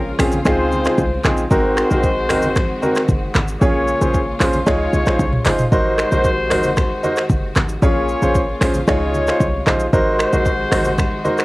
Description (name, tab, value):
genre	afrobeats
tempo	114 BPM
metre	4/4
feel	straight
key	unclear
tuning	A4 = 440 Hz
part	clear horn section	second line	0.0-11.4 s	F3 to Db5	-23 LUFS	left 2 dB	cassette tape
part	warm studio string section	sustained chords	0.0-11.4 s	C3 to Gb4	-28 LUFS	left 1 dB	cassette tape
part	short 808-style bass	bass	0.0-11.0 s	Gb1 to Db2	-21 LUFS	equal	none
part	clear grand piano	accompaniment	0.2-11.4 s	C4 to Db5	-19 LUFS	equal	cassette tape
part	afro-pop drum kit	drums	0.2-11.4 s	finger snaps, handclaps, hi-hat, kick drum, rim click, shaker, toms	-20 LUFS	equal	cassette tape
part	congas	percussion	0.2-11.4 s	none	-28 LUFS	left 1 dB	none
room	light reverb, small room ambience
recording	home recording on cassette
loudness	-14 LUFS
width	side -20 dB against mid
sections	0.0-11.4 A section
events	none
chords	0.5 Dbmaj7; 1.5 Ab7; 3.6 Bbm7; 4.7 Dbmaj7; 5.7 Ab7; 7.8 Bbm7; 8.9 Dbmaj7; 9.9 Ab7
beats	0.46 0.98 | 1.51 2.04 2.56 3.09 | 3.62 4.14 4.67 5.19 | 5.72 6.25 6.77 7.30 | 7.83 8.35 8.88 9.40 | 9.93 10.46 10.98